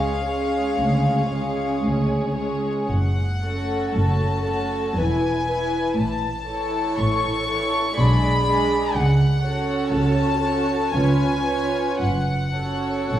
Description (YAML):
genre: classical, slow romantic movement for string orchestra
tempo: 59 BPM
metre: 3/4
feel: uneven beats, rubato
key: F# minor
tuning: A4 = 441 Hz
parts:
  - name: warm symphonic violin section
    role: melody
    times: 0.0-13.2 s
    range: E#5 to C#6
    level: -26 LUFS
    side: left 3 dB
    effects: none
  - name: warm chamber violin section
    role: second line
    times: 0.0-13.2 s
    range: F#4 to D5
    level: -27 LUFS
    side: right 1 dB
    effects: none
  - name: warm studio viola section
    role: accompaniment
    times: 0.0-13.2 s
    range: E3 to F#4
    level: -26 LUFS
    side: right 2 dB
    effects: none
  - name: dark symphonic double bass section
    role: bass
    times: 0.0-13.2 s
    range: E1 to C#2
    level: -25 LUFS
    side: equal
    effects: none
  - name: warm studio cello section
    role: bass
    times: 0.0-13.2 s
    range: C#2 to C#3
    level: -26 LUFS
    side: equal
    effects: none
room: wet recital hall reverb, RT60 1.4 s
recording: heard from further back in the room, vinyl crackle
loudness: -19 LUFS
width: side -11 dB against mid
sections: 0.0-13.2 A section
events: none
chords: 0.0 C#; 2.9 F#m; 5.0 E; 6.0 A; 8.0 G#dim/B; 9.0 F#m/C#; 10.9 C#7; 12.0 F#m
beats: 0.78 1.82 | 2.88 3.94 4.97 | 5.98 6.98 7.97 | 8.95 9.92 10.94 | 12.02 13.11